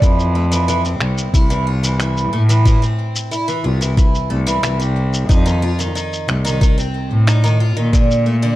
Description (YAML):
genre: folktronica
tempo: 91 BPM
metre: 4/4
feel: straight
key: F major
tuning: A4 = 437 Hz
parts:
  - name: picked twelve-string acoustic guitar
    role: arpeggios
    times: 0.0-8.6 s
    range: D3 to F4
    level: -21 LUFS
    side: right 1 dB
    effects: digital delay
  - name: rich cello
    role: bass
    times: 0.0-8.6 s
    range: C2 to Bb2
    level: -16 LUFS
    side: equal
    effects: tube saturation
  - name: electronic kick drum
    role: drums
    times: 0.0-8.1 s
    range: none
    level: -13 LUFS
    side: equal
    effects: none
  - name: electronic shaker and finger snaps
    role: drums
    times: 0.0-8.2 s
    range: none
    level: -24 LUFS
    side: left 1 dB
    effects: none
room: small room ambience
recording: none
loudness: -14 LUFS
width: side -15 dB against mid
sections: 0.0-8.6 A section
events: none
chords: 0.0 Fmaj7; 5.3 F7; 7.9 Bbmaj7